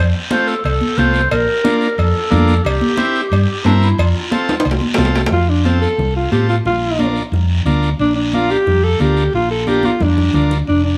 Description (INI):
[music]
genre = latin, cumbia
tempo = 179 BPM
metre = 4/4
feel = straight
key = unclear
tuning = A4 = 440 Hz
[part]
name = growling clarinet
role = second line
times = 0.0-5.1 s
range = D4 to C5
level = -22 LUFS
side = equal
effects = none
[part]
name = hollow-body short-scale fingered electric bass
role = bass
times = 0.0-11.0 s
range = F1 to A2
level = -18 LUFS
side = equal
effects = none
[part]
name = combo organ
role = accompaniment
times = 0.3-10.6 s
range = A3 to Bb4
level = -24 LUFS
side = equal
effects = none
[part]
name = congas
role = percussion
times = 0.3-10.8 s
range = none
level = -24 LUFS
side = equal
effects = none
[part]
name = guiro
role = percussion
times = 0.3-11.0 s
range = none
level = -32 LUFS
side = equal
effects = none
[part]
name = cowbell and timbales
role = percussion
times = 0.7-5.3 s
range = none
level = -23 LUFS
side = equal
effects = none
[part]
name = warm alto saxophone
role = melody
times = 5.3-11.0 s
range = C4 to A4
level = -19 LUFS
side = equal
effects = none
[sound]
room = light reverb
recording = none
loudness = -15 LUFS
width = mono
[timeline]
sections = 0.0-5.3 A section; 5.3-11.0 B section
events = drum fill 4.5-5.3, 9.7-10.7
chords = 0.0 F; 1.3 Bb; 2.6 C7; 4.0 F; 6.7 Bb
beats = 0.31 0.65 0.98 | 1.31 1.65 1.98 2.31 | 2.65 2.98 3.32 3.65 | 3.98 4.32 4.65 4.99 | 5.32 5.66 5.99 6.32 | 6.66 6.99 7.33 7.66 | 8.00 8.33 8.67 9.00 | 9.34 9.67 10.01 10.34 | 10.68